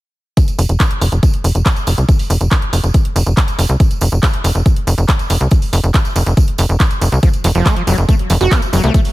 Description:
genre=psychedelic trance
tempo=140 BPM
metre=4/4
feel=straight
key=F major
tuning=A4 = 442 Hz
part: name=electronic kick drum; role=drums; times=0.4-9.0 s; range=none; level=-12 LUFS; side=equal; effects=none
part: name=techno drum kit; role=drums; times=0.4-9.1 s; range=handclaps, hi-hat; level=-22 LUFS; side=right 1 dB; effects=none
part: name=tambourine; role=percussion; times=0.4-9.1 s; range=none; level=-28 LUFS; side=right 6 dB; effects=none
part: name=tight sequencer bass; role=bass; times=0.6-8.9 s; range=F1 to C2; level=-13 LUFS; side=equal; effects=none
part: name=screaming distorted acid line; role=riff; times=7.2-9.0 s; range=F3 to Gb4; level=-18 LUFS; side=right 1 dB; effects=distortion, chorus, auto-pan, sidechain pumping, dub echo
room=little or no reverb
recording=none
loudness=-11 LUFS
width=side -18 dB against mid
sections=0.4-9.1 A section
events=none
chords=0.4 F5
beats=| 0.37 0.80 1.23 1.66 | 2.09 2.52 2.94 3.37 | 3.80 4.23 4.66 5.09 | 5.51 5.94 6.37 6.80 | 7.23 7.66 8.09 8.52 | 8.94

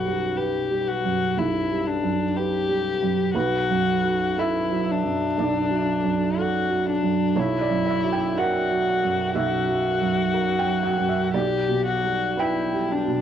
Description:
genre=neoclassical piano and strings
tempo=60 BPM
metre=4/4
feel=rubato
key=B minor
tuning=A4 = 441 Hz
part: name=dark violin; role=melody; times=0.0-13.2 s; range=D4 to G4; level=-24 LUFS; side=left 6 dB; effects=cassette tape
part: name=felt-muted upright piano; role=accompaniment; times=0.0-13.2 s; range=B1 to G5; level=-24 LUFS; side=right 6 dB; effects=cassette tape
room=light reverb, studio ambience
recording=home recording on cassette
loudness=-21 LUFS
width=side -9 dB against mid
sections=0.0-13.2 A section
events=none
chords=0.0 Gmaj7/B; 3.3 Bm7; 7.4 F#7/B; 11.3 Em7/B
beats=0.38 1.37 2.36 | 3.35 4.38 5.39 6.38 | 7.36 8.36 9.35 10.33 | 11.34 12.39

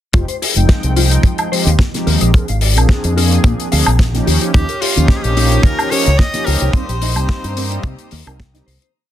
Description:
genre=nu-disco, nu disco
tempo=109 BPM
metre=4/4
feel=straight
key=F minor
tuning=A4 = 439 Hz
part: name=mellow synth brass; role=accompaniment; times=0.1-8.6 s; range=F3 to G5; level=-20 LUFS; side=right 1 dB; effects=chorus, sidechain pumping, slapback echo
part: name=mellow electric guitar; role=riff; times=0.1-8.9 s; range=C3 to Bb5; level=-25 LUFS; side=left 3 dB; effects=analog chorus
part: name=fingered electric bass with an envelope filter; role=bass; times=0.1-8.8 s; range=F1 to C3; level=-15 LUFS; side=equal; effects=none
part: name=damped 70s drum kit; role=drums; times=0.1-8.9 s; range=hi-hat, snare drum, woodblock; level=-19 LUFS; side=left 3 dB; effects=none
part: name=kick drum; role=drums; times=0.1-8.5 s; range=none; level=-12 LUFS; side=equal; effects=none
part: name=edgy tenor saxophone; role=melody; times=4.5-7.8 s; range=F4 to Eb5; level=-22 LUFS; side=equal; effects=tape echo
part: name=rich studio string section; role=sustained chords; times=4.5-8.9 s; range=C5 to Eb6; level=-28 LUFS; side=left 3 dB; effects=sidechain pumping
room=light reverb, studio ambience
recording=dense, heavily limited modern master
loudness=-12 LUFS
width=side -12 dB against mid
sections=0.1-8.9 drop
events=drop 0.1-8.9; fade-out 6.0-8.9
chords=0.1 Fm7; 2.3 Bb7; 4.3 Eb7; 6.7 Cm7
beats=| 0.14 0.69 1.24 1.79 | 2.34 2.89 3.44 3.99 | 4.54 5.09 5.64 6.19 | 6.74 7.29 7.84 8.39

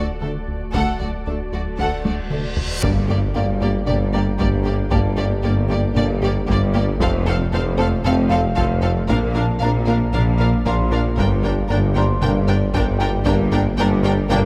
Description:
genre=cinematic, hybrid orchestral and electronic film score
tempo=115 BPM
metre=4/4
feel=straight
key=G minor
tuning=A4 = 440 Hz
part: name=clear symphonic violin section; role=melody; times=0.0-14.4 s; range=A4 to G5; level=-32 LUFS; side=equal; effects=none
part: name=clear studio violin section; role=second line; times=0.0-14.4 s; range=D4 to Bb4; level=-34 LUFS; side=equal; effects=none
part: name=rich symphonic viola section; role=accompaniment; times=0.0-14.4 s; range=A3 to D4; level=-31 LUFS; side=equal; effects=none
part: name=glassy FM pad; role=sustained chords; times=0.0-14.5 s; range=A3 to F5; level=-31 LUFS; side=equal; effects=none
part: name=soft round pluck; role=arpeggios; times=0.0-14.2 s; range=D3 to Bb4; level=-33 LUFS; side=equal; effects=none
part: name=rubbery square bass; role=riff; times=0.0-14.5 s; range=D2 to D3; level=-27 LUFS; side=equal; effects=none
part: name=mellow tuba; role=bass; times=0.0-14.5 s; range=F1 to D2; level=-28 LUFS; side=equal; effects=none
part: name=rich symphonic cello section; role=bass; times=0.0-14.5 s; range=D2 to Bb2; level=-28 LUFS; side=equal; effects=none
part: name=sub bass with octave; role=bass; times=0.0-14.5 s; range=D1 to Bb1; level=-29 LUFS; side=equal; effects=none
part: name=felt-muted upright piano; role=texture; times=0.0-14.5 s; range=A4 to C6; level=-33 LUFS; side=equal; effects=tape echo
part: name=taiko ensemble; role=drums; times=0.7-14.5 s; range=none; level=-28 LUFS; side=equal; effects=none
part: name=reverse cymbal and impact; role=sound effects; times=2.0-4.9 s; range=none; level=-34 LUFS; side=equal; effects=none
part: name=dark French horn section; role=sustained chords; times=2.8-14.5 s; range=A3 to D4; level=-31 LUFS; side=equal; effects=none
part: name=rich symphonic double bass section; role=bass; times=2.8-14.5 s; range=F1 to Bb1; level=-28 LUFS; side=equal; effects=none
room=light reverb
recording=none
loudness=-19 LUFS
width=mono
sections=0.0-2.8 A section; 2.8-14.5 B section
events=reverse cymbal 2.0-2.8; drum fill 2.0-2.8; impact 2.8-4.9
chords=0.0 D; 2.8 Gm; 7.0 F; 9.1 Bb; 11.2 Gm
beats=0.22 | 0.74 1.26 1.78 2.31 | 2.83 3.35 3.87 4.39 | 4.92 5.44 5.96 6.48 | 7.00 7.52 8.05 8.57 | 9.09 9.61 10.13 10.65 | 11.18 11.70 12.22 12.74 | 13.26 13.79 14.31

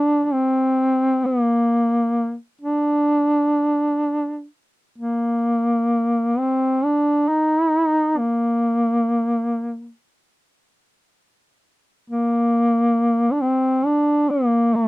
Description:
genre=caucasian folk, Caucasian lament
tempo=free time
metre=none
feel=none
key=unclear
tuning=A4 = 441 Hz
part: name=mellow duduk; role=solo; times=0.0-14.9 s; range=Ab3 to Eb4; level=-17 LUFS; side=equal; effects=none
room=light reverb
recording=dry, close 1970s-style studio recording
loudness=-17 LUFS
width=side -19 dB against mid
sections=0.0-14.9 A section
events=none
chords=none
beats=free time

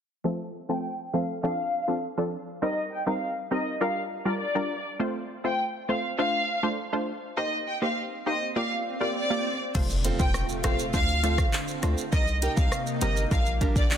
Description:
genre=dancehall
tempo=101 BPM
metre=4/4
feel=straight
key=unclear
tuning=A4 = 438 Hz
part: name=punchy chord stab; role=accompaniment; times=0.2-13.8 s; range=F3 to D5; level=-30 LUFS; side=equal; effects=chorus, low-pass filter
part: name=rich studio violin section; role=melody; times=0.7-14.0 s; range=D5 to G5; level=-30 LUFS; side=left 1 dB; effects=low-pass filter, tape echo
part: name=swell and impact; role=sound effects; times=8.1-12.1 s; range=none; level=-36 LUFS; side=equal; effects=none
part: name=lush unison pad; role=sustained chords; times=10.1-14.0 s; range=C3 to G4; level=-35 LUFS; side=equal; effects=chorus, phaser, sidechain pumping
part: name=warm 808-style bass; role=bass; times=9.8-14.0 s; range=F1 to D2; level=-27 LUFS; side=equal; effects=none
part: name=deep house drum kit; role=drums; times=9.8-14.0 s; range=crash cymbal, handclaps, hi-hat, kick drum, rim click, shaker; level=-26 LUFS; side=equal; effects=soft clipping on snare
part: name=nylon-string guitar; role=arpeggios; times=10.0-13.8 s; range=C4 to Bb4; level=-35 LUFS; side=right 5 dB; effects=tape echo
room=light reverb, digital ambience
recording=dense, heavily limited modern master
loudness=-25 LUFS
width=side -8 dB against mid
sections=0.2-9.8 A section; 9.8-14.0 B section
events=filter sweep 0.2-9.8; swell 8.1-9.8; impact 9.8-12.1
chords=0.2 F; 1.4 Dm7; 2.6 Cm7; 3.8 Bb6; 5.0 F; 6.2 Dm7; 7.4 Cm7; 8.6 Bb6; 9.8 F; 10.9 Dm7; 12.1 Cm7; 13.3 Bb6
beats=| 0.24 0.84 1.43 2.03 | 2.62 3.22 3.81 4.40 | 5.00 5.59 6.19 6.78 | 7.37 7.97 8.56 9.16 | 9.75 10.34 10.94 11.53 | 12.13 12.72 13.31 13.91

